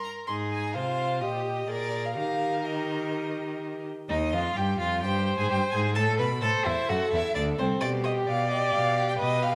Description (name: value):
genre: quick classical-period movement for string quartet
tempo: 129 BPM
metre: 4/4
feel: rubato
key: Eb major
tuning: A4 = 441 Hz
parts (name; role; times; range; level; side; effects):
- rich violin; melody; 0.0-9.6 s; C5 to C6; -34 LUFS; equal; none
- warm violin; second line; 0.0-9.6 s; C4 to C5; -34 LUFS; equal; none
- rich viola; accompaniment; 0.3-9.6 s; Eb4 to D5; -33 LUFS; equal; none
- clear cello; bass; 0.3-9.6 s; C2 to Eb3; -33 LUFS; equal; none
room: moderate recital hall reverb, RT60 1.4 s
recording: none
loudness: -28 LUFS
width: mono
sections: 0.0-4.1 A section; 4.1-9.6 B section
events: none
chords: 0.3 Ab; 1.2 Eb/Bb; 1.7 Bb7; 2.2 Eb; 4.1 Cm/Eb; 6.0 D7; 7.8 G/B